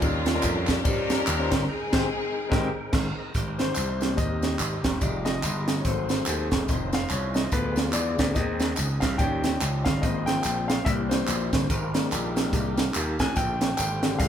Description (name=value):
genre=uptempo gospel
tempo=144 BPM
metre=4/4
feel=swing 59% on 8ths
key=Ab major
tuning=A4 = 440 Hz
part: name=warm studio string section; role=melody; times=0.0-2.9 s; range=Bb3 to Bb4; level=-30 LUFS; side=left 2 dB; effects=none
part: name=clear concert grand piano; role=accompaniment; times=0.0-14.3 s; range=D3 to Ab5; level=-30 LUFS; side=left 3 dB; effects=none
part: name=percussive tonewheel organ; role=sustained chords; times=0.0-14.3 s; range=D3 to G5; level=-37 LUFS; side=right 1 dB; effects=slow rotary speaker, overdrive, chorus vibrato
part: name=gritty slap bass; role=bass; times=0.0-14.3 s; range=Fb1 to G2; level=-29 LUFS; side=equal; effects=overdrive
part: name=crisp fusion drum kit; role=drums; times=0.0-14.3 s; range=crash cymbal, hi-hat, kick drum, ride cymbal, snare drum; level=-26 LUFS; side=right 1 dB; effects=none
part: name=tambourine and handclaps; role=percussion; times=0.0-14.3 s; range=none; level=-34 LUFS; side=equal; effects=none
part: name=muted French horn section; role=sustained chords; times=3.3-14.3 s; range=D3 to C5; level=-40 LUFS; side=right 2 dB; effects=none
room=moderate large studio reverb, RT60 1.4 s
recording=band playing live in one room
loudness=-23 LUFS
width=side -9 dB against mid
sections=0.0-3.4 A section; 3.4-14.3 B section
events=band accent 1.7-3.4; grand piano solo 3.4-14.3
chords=0.0 Eb9; 1.7 Abmaj9; 3.4 Abmaj7; 5.0 Fm9; 5.9 Ab7b9; 6.7 Dbmaj9/F; 7.5 Ddim7; 8.4 Ab/Eb; 9.2 Eb9; 10.0 Ab69; 10.9 C7; 11.7 Fm11/Ab; 13.4 Bb13